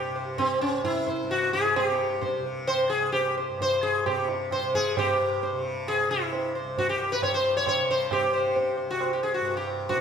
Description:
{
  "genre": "indian classical, Hindustani",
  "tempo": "132 BPM",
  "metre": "7/4",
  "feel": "straight",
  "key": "unclear",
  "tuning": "A4 = 439 Hz",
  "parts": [
    { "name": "sitar", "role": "melody", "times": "0.0-10.0 s", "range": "C4 to Db5", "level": "-25 LUFS", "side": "left 2 dB", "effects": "none" },
    { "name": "tanpura", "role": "drone", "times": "0.0-10.0 s", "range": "C2 to C3", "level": "-36 LUFS", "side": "left 1 dB", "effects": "none" },
    { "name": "tabla", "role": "percussion", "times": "0.4-10.0 s", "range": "none", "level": "-29 LUFS", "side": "right 4 dB", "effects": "none" }
  ],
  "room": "wet recital hall reverb, RT60 1.4 s",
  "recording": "none",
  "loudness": "-24 LUFS",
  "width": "side -7 dB against mid",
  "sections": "0.0-5.0 A section; 5.0-10.0 B section",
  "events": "speeding up 0.0-10.0",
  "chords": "none",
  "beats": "0.38 0.84 1.30 | 1.76 2.22 2.68 3.14 3.60 4.06 4.51 | 4.96 5.42 5.87 6.32 6.77 7.22 7.67 | 8.11 8.56 9.00 9.44 9.88"
}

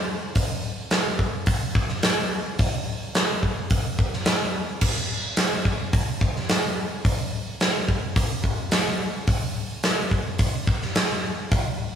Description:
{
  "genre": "rock",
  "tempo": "108 BPM",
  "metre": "4/4",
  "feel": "straight",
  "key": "none",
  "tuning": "none",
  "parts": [
    { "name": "big rock drum kit", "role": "drums", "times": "0.4-11.6 s", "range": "crash cymbal, hi-hat, kick drum, snare drum", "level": "-22 LUFS", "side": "equal", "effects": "none" }
  ],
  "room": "little or no reverb",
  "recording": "band playing live in one room",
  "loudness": "-22 LUFS",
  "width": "side -8 dB against mid",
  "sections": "0.0-12.0 A section",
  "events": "none",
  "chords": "none",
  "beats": "| 0.37 0.93 1.48 2.04 | 2.60 3.15 3.71 4.27 | 4.83 5.38 5.94 6.50 | 7.06 7.61 8.17 8.73 | 9.29 9.84 10.40 10.96 | 11.52"
}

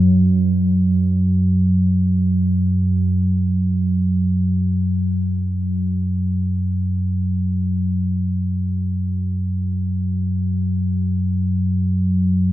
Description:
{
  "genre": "ambient",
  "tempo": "free time",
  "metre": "none",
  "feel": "none",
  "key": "unclear",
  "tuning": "A4 = 440 Hz",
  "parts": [
    { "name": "deep rumbling drone", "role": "solo", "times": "0.0-12.5 s", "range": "F#2 to F#3", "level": "-17 LUFS", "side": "equal", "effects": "built-in reverb, tape echo" }
  ],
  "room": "moderate huge ambient reverb, RT60 7.7 s",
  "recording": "none",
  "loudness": "-17 LUFS",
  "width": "side -15 dB against mid",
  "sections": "0.1-12.5 A section",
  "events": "none",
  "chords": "none",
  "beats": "free time"
}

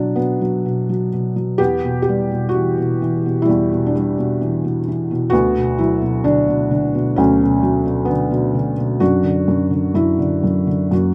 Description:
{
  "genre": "classical, lyrical solo piano",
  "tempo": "64 BPM",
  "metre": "4/4",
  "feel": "rubato",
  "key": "B minor",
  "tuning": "A4 = 441 Hz",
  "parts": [
    { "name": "felt-muted upright piano", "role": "solo", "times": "0.0-11.1 s", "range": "D2 to G4", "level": "-18 LUFS", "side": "equal", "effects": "none" }
  ],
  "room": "light reverb",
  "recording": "none",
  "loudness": "-18 LUFS",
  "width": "mono",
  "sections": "0.0-11.1 A section",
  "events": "none",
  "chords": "0.0 Bm; 1.6 Emadd9; 5.3 Bmadd9/D; 9.0 Dadd9/F#",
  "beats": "0.64 | 1.59 2.53 3.46 4.39 | 5.33 6.25 7.17 8.08 | 9.01 9.95 10.92"
}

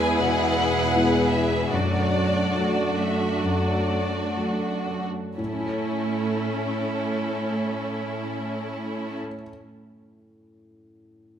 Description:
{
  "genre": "cinematic",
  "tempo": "58-82 BPM",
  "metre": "4/4",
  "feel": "rubato",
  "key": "A major",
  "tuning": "A4 = 440 Hz",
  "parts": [
    { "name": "rich studio violin section", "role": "melody", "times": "0.0-9.2 s", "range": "A4 to G#5", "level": "-30 LUFS", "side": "left 2 dB", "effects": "none" },
    { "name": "rich studio violin section", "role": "second line", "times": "0.0-9.2 s", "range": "C#4 to B4", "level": "-29 LUFS", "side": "left 2 dB", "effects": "none" },
    { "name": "felt-muted upright piano", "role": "accompaniment", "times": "0.0-11.4 s", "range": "E2 to C#5", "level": "-30 LUFS", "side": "left 1 dB", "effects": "none" },
    { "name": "rich studio viola section", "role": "accompaniment", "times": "0.0-9.2 s", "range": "A3 to E4", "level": "-29 LUFS", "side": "right 2 dB", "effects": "none" },
    { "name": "concert harp", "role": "arpeggios", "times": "0.0-9.5 s", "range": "E2 to C#5", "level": "-32 LUFS", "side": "left 3 dB", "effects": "none" },
    { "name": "clear studio cello section", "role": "bass", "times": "0.0-9.2 s", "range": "E2 to A2", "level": "-30 LUFS", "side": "right 3 dB", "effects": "none" }
  ],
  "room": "wet recital hall reverb, RT60 1.7 s",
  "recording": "none",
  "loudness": "-22 LUFS",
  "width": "side -9 dB against mid",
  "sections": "0.0-5.4 A section; 5.4-9.4 B section",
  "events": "slowing down 0.0-5.4",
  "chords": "0.0 E; 1.7 D/F#; 5.4 A",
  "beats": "0.17 0.93 | 1.73 2.56 3.43 4.36 | 5.38 6.38 7.39 8.41"
}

